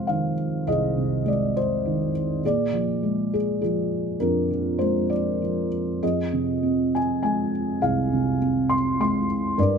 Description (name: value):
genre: classical, lyrical solo piano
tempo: 102 BPM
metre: 3/4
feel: rubato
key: F dorian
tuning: A4 = 441 Hz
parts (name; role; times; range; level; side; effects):
- felt-muted upright piano; solo; 0.0-9.8 s; C2 to C6; -21 LUFS; equal; none
room: light reverb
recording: close, detailed microphones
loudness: -21 LUFS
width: side -6 dB against mid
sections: 0.0-9.8 A section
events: none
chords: 0.0 Fm7; 2.4 Bb7; 6.0 Fm7